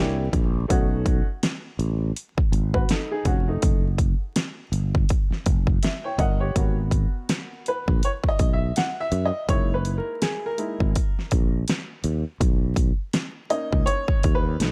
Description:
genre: hip hop, jazz-hop.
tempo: 82 BPM.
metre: 4/4.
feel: swing 59% on 16ths.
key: unclear.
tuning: A4 = 440 Hz.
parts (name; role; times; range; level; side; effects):
warm upright piano; accompaniment; 0.0-14.7 s; G#3 to G5; -30 LUFS; equal; none.
sustaining fretless electric bass; bass; 0.0-14.7 s; E#1 to F#2; -27 LUFS; equal; none.
big-room dance drum kit; drums; 0.3-14.7 s; hi-hat, kick drum, snare drum; -25 LUFS; equal; none.
room: digital ambience.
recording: vinyl crackle.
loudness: -24 LUFS.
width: mono.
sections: 0.0-6.6 A section; 6.6-14.7 B section.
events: upright piano fill 5.5-6.6; upright piano solo 6.6-14.7.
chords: 0.0 C9; 0.7 B9; 3.6 F#5; 6.6 G#m9; 9.5 F#13; 12.4 Bmaj9.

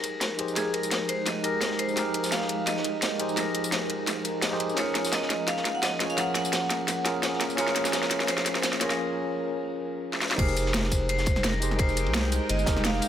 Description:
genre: liquid drum and bass.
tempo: 171 BPM.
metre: 4/4.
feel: swing 54% on 16ths.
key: F minor.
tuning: A4 = 440 Hz.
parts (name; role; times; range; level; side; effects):
vibraphone with hard mallets; melody; 0.0-13.1 s; Ab4 to Gb5; -31 LUFS; equal; low-pass filter, tape echo.
tine electric piano; accompaniment; 0.0-13.1 s; F3 to Eb5; -31 LUFS; equal; medium stereo tremolo, digital delay.
shimmering ambient pad; sustained chords; 0.0-13.1 s; F3 to G5; -35 LUFS; right 1 dB; chorus, built-in reverb.
crunchy breakbeat drum kit; drums; 0.0-13.1 s; ride cymbal, snare drum; -34 LUFS; equal; high-pass filter on cymbals, high-pass filter on snare, high-pass filter on room.
drum and bass drum kit; drums; 0.0-13.1 s; crash cymbal, hi-hat, snare drum, tambourine; -29 LUFS; equal; overdrive, high-pass filter on hats, high-pass filter on snare, high-pass filter on perc, high-pass filter on cymbals.
saturated sub bass; bass; 10.4-13.0 s; F1 to C2; -28 LUFS; equal; none.
electronic kick drum; drums; 10.4-12.7 s; none; -26 LUFS; equal; overdrive.
room: moderate plate reverb, RT60 1.8 s.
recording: none.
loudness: -24 LUFS.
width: side -10 dB against mid.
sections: 0.0-10.4 A section; 10.4-13.1 B section.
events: build-up 0.0-10.4; drum fill 0.0-9.0, 10.1; filter sweep on ambient pad 0.0-10.4; break 9.0-10.4; drop 10.4-13.1.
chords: 0.0 Fm11; 4.8 Gbmaj7; 10.4 Fm11.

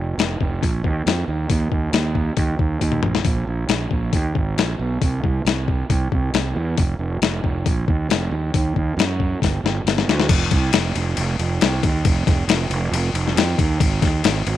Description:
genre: classic rock.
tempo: 137 BPM.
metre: 4/4.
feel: straight.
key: unclear.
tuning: A4 = 440 Hz.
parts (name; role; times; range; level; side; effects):
fuzz fingered electric bass; bass; 0.0-14.6 s; F1 to Gb2; -21 LUFS; right 2 dB; overdrive.
dusty soul sampler-style drum kit; drums; 0.2-14.6 s; crash cymbal, hi-hat, kick drum, ride cymbal, snare drum, toms; -20 LUFS; left 3 dB; overdrive.
room: light reverb.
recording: 1960s-style stereo.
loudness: -18 LUFS.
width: side -12 dB against mid.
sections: 0.0-10.3 A section; 10.3-14.6 B section.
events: drum fill 2.8-3.3, 9.4-10.3.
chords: none.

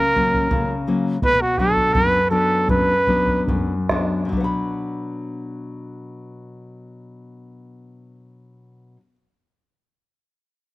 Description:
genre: andean folk, Andean ensemble.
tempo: 67-84 BPM.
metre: 2/4.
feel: straight.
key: B minor.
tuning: A4 = 439 Hz.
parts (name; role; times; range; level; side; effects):
warm trumpet; melody; 0.0-3.4 s; F#4 to B4; -18 LUFS; right 1 dB; slapback echo.
nylon-string guitar; accompaniment; 0.0-9.2 s; F#2 to B5; -23 LUFS; left 2 dB; none.
bombo; percussion; 0.2-4.7 s; none; -25 LUFS; right 1 dB; none.
room: light reverb.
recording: recorded outdoors, with no room sound.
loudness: -17 LUFS.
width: side -18 dB against mid.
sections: 0.0-4.3 A section; 4.3-7.9 B section.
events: slowing down 1.2-4.3.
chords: 0.0 F#; 1.2 Bm.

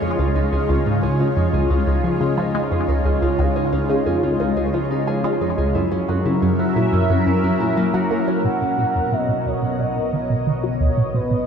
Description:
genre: ambient, sequencer-driven space music.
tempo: 89 BPM.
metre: 4/4.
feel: straight.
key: Db major, B major from 8.4 s.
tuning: A4 = 440 Hz.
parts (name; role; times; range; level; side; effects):
phased analog pad; sustained chords; 0.0-11.5 s; B2 to Fb5; -22 LUFS; equal; phaser, chorus, shimmer reverb.
concert harp; arpeggios; 0.0-11.2 s; Bb3 to Bb4; -27 LUFS; left 2 dB; auto-pan, shimmer reverb, ping-pong delay.
resonant blip pluck; riff; 0.0-11.4 s; Db2 to Bb3; -20 LUFS; equal; phaser, ping-pong delay.
bubbling stepped-filter texture; texture; 0.0-8.5 s; Db4 to Db5; -30 LUFS; right 2 dB; chorus, built-in reverb, shimmer reverb.
expressive synth lead; melody; 8.4-11.5 s; B4 to F#5; -25 LUFS; right 2 dB; chorus, shimmer reverb, ping-pong delay.
fat analog bass; bass; 8.4-11.5 s; B1; -38 LUFS; left 1 dB; none.
room: wet huge ambient reverb, RT60 8.4 s.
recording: dark, warm production.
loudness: -17 LUFS.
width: side -7 dB against mid.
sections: 0.0-8.4 A section; 8.4-11.5 B section.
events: filter sweep on synth arpeggio sound 8.4-11.5.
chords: 0.0 Dbadd9; 5.7 Gb7; 8.4 Badd9.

